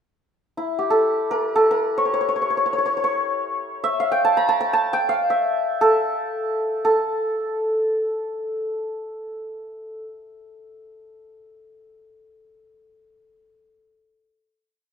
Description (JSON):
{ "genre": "Persian modal ensemble", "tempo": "free time", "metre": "none", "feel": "none", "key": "A dastgah homayun", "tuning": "A4 = 440 Hz", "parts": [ { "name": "santur", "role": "solo", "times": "0.6-10.0 s", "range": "E4 to Bb5+45c", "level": "-20 LUFS", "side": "equal", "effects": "none" } ], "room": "moderate recital hall reverb, RT60 1.6 s", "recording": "minimal, uncompressed stereo recording", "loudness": "-19 LUFS", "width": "side -7 dB against mid", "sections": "0.3-6.8 free-time section; 6.8-10.1 final note", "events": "none", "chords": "none" }